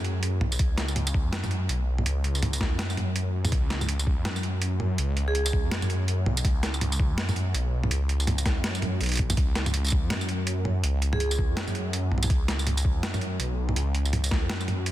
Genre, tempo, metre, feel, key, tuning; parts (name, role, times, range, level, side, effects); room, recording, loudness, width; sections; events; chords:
half-time drum and bass; 164 BPM; 4/4; swing 59% on 16ths, half-time; A4 = 440 Hz
phased detuned saw bass; bass; 0.0-14.9 s; B1 to F#2; -27 LUFS; equal; phaser, tube saturation
boom bap sampler-style drum kit; drums; 0.0-14.9 s; hi-hat, snare drum, tambourine, toms; -29 LUFS; right 1 dB; overdrive
electronic kick drum; drums; 0.6-14.4 s; -25 LUFS; equal; overdrive
vibraphone with medium hard mallets; melody; 5.3-5.5, 11.1-11.4 s; G#4; -35 LUFS; right 2 dB; dub echo
digital ambience; dense, heavily limited modern master; -24 LUFS; side -14 dB against mid
0.0-14.9 A section